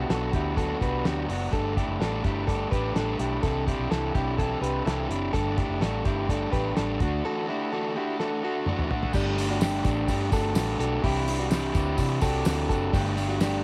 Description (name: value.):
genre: jangly indie pop.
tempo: 126 BPM.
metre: 4/4.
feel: straight.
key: G major.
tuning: A4 = 440 Hz.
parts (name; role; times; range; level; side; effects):
crunchy overdriven guitar; accompaniment; 0.0-13.6 s; B2 to G4; -32 LUFS; equal; cassette tape.
direct-recorded clean electric guitar; arpeggios; 0.0-13.6 s; D4 to B4; -33 LUFS; equal; spring reverb, cassette tape.
vintage muted fingered electric bass; bass; 0.0-13.6 s; F#1 to C3; -33 LUFS; equal; none.
cloth-damped thuddy drum kit; drums; 0.1-13.5 s; crash cymbal, hi-hat, kick drum, snare drum, toms; -31 LUFS; equal; cassette tape.
tambourine; percussion; 9.1-13.5 s; none; -46 LUFS; equal; none.
room: little or no reverb.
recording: home recording on cassette.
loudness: -27 LUFS.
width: mono.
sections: 0.0-9.1 A section; 9.1-13.6 B section.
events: drum fill 8.2-9.1.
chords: 0.0 Bm; 1.5 Gsus2; 3.4 Cadd9; 5.3 Gsus2; 7.0 Dadd9; 9.1 Gsus2; 11.0 Cadd9; 12.9 Gsus2.